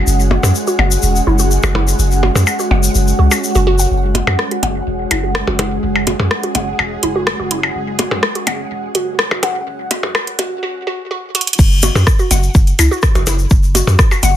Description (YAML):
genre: minimal techno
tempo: 125 BPM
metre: 4/4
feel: straight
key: unclear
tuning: A4 = 440 Hz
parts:
  - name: punchy sub bass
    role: bass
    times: 0.0-14.4 s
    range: E1 to F#2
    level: -15 LUFS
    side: equal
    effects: sidechain pumping
  - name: airy breathy pad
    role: texture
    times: 0.0-10.6 s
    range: C#4 to F#5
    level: -23 LUFS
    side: right 1 dB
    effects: chorus, sidechain pumping
  - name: swarming drone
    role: texture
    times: 0.0-10.6 s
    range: G#3 to G#4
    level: -24 LUFS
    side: right 1 dB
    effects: built-in reverb, sidechain pumping
  - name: tube shaker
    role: percussion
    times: 0.1-3.9, 11.6-14.3 s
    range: none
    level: -21 LUFS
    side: left 6 dB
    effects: none
  - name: hollow square pluck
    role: riff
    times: 0.3-14.2 s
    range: E4 to F#5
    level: -21 LUFS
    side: right 1 dB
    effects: chorus, sidechain pumping, digital delay
  - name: percussion blips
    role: percussion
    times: 0.3-14.3 s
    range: none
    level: -19 LUFS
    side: left 3 dB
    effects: tape echo
  - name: booming analog drum machine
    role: drums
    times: 4.1-14.3 s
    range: crash cymbal, hi-hat, rim click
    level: -17 LUFS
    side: equal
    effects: overdrive
  - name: electronic kick drum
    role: drums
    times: 11.6-14.1 s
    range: none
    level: -11 LUFS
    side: equal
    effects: none
room: moderate studio reverb, RT60 0.6 s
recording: dense, heavily limited modern master, high-pass filter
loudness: -12 LUFS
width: side -11 dB against mid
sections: 0.0-3.9 A section; 3.9-11.6 B section; 11.6-14.4 C section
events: filter sweep on synth arpeggio sound 0.0-3.9, 3.9-11.6; build-up 3.9-11.6; filter sweep 3.9-11.6; drum fill 11.3; drop 11.6-14.4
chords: 0.0 F#5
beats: | 0.07 0.55 1.03 1.51 | 1.99 2.47 2.95 3.43 | 3.91 4.39 4.87 5.35 | 5.83 6.31 6.79 7.27 | 7.75 8.23 8.71 9.19 | 9.67 10.15 10.63 11.11 | 11.59 12.07 12.55 13.03 | 13.51 13.99